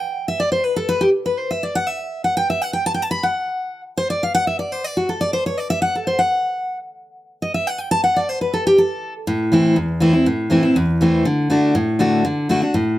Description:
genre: bluegrass.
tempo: 243 BPM.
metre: 4/4.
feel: straight.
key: A dorian.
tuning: A4 = 439 Hz.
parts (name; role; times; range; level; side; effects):
picked steel-string acoustic guitar; solo; 0.0-13.0 s; E2 to B5; -17 LUFS; equal; none.
room: moderate studio reverb, RT60 0.8 s.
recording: none.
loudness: -17 LUFS.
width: side -15 dB against mid.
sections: 0.0-9.3 A section; 9.3-13.0 B section.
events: steel-string acoustic guitar solo 0.0-9.3.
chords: 0.0 N.C.; 9.3 Am; 11.3 D.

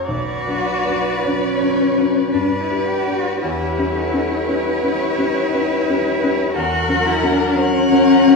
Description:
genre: classical, slow romantic movement for piano quintet.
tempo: 50-60 BPM.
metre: 3/4.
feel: rubato.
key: B minor.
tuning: A4 = 436 Hz.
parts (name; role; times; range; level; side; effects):
dark viola; accompaniment; 0.0-8.4 s; G4 to D5; -25 LUFS; right 1 dB; none.
warm grand piano; accompaniment; 0.0-8.4 s; B1 to B4; -21 LUFS; left 2 dB; none.
rich violin; melody; 0.1-8.4 s; C#5 to F#5; -26 LUFS; left 3 dB; none.
rich cello; second line; 0.1-8.4 s; C#4 to G4; -18 LUFS; left 1 dB; none.
warm violin; second line; 0.1-8.4 s; A#4 to B4; -26 LUFS; left 3 dB; none.
room: wet recital hall reverb, RT60 1.5 s.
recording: heard from further back in the room, small room ambience.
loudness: -16 LUFS.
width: side -3 dB against mid.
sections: 0.1-8.4 A section.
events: none.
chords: 0.1 Bm; 2.3 G; 3.4 C#m7b5/E; 6.5 F#7/E.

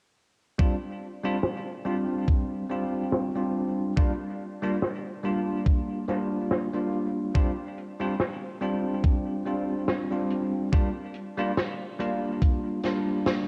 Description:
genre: vaporwave.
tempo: 71 BPM.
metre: 4/4.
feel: swing 55% on 16ths.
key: unclear.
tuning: A4 = 440 Hz.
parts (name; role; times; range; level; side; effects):
bell-like tine electric piano; accompaniment; 0.6-13.4 s; G3 to F4; -30 LUFS; equal; lush chorus, delay.
compact cocktail drum kit; drums; 0.6-13.4 s; hi-hat, snare drum; -34 LUFS; equal; low-pass filter on hats, studio reverb, low-pass filter on snare, low-pass filter on room.
electronic kick drum; drums; 0.6-12.6 s; none; -24 LUFS; equal; studio reverb.
room: wet plate reverb, RT60 2.8 s.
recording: dreamy mix soaked in reverb, cassette tape.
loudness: -28 LUFS.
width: mono.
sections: 0.6-13.5 A section.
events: filter sweep on drum 0.6-13.5.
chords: 0.6 G7sus4; 4.0 Gm7; 7.4 G7sus4; 10.7 Gm7.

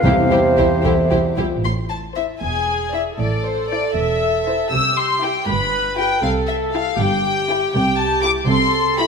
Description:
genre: quick classical-period movement for symphony orchestra.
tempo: 79 BPM (dotted quarters).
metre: 6/8.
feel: straight.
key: A minor.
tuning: A4 = 439 Hz.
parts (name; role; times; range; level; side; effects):
warm studio violin section; melody; 0.0-9.1 s; C5 to E6; -20 LUFS; left 4 dB; none.
clear clarinet; second line; 0.0-1.3 s; C5; -24 LUFS; equal; none.
mellow concert flute; second line; 0.0-1.4 s; E5 to F5; -23 LUFS; equal; none.
rich studio violin section; second line; 0.0-9.1 s; E4 to D5; -28 LUFS; left 3 dB; none.
mellow bassoon; accompaniment; 0.0-1.3 s; C3; -20 LUFS; right 3 dB; none.
warm studio viola section; accompaniment; 0.0-9.1 s; E4 to B4; -24 LUFS; right 2 dB; none.
mellow French horn section; sustained chords; 0.0-1.6 s; E4 to C5; -25 LUFS; left 5 dB; none.
warm studio cello section; bass; 0.0-9.1 s; E2 to C3; -25 LUFS; right 2 dB; none.
warm studio double bass section; bass; 0.0-9.1 s; E1 to C2; -25 LUFS; right 3 dB; none.
timpani; percussion; 0.0-0.8 s; C3; -21 LUFS; equal; none.
room: wet scoring stage reverb, RT60 1.5 s.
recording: none.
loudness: -16 LUFS.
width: side -5 dB against mid.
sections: 0.0-1.6 A section; 1.6-9.1 B section.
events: none.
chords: 0.0 C; 1.6 Am; 2.4 E7; 3.2 Am; 4.7 C; 5.5 G7; 6.2 C; 7.7 Am7/C.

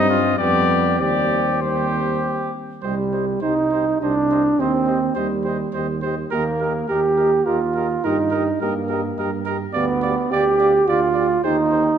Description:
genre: classical, brass quintet.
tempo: 104 BPM.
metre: 3/4.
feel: rubato.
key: C minor.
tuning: A4 = 441 Hz.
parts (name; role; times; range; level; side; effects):
dark trumpet; melody; 0.0-11.9 s; C5 to G5; -26 LUFS; left 7 dB; none.
warm trumpet; second line; 0.0-11.8 s; F4 to D5; -26 LUFS; right 5 dB; none.
mellow French horn; accompaniment; 0.0-11.9 s; B3 to G4; -28 LUFS; left 5 dB; none.
mellow trombone; accompaniment; 0.0-12.0 s; G3 to G4; -20 LUFS; right 3 dB; none.
mellow tuba; bass; 0.0-11.9 s; C2 to G2; -26 LUFS; right 4 dB; none.
room: wet scoring stage reverb, RT60 1.8 s.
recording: none.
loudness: -17 LUFS.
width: side -8 dB against mid.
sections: 0.0-2.8 A section; 2.8-12.0 A section.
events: none.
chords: 0.4 G7/F; 1.0 Cm/Eb; 2.8 Cm; 4.6 Cm/Eb; 6.3 Eb; 8.0 Eb/G; 9.7 G7/D; 11.4 Cm/Eb.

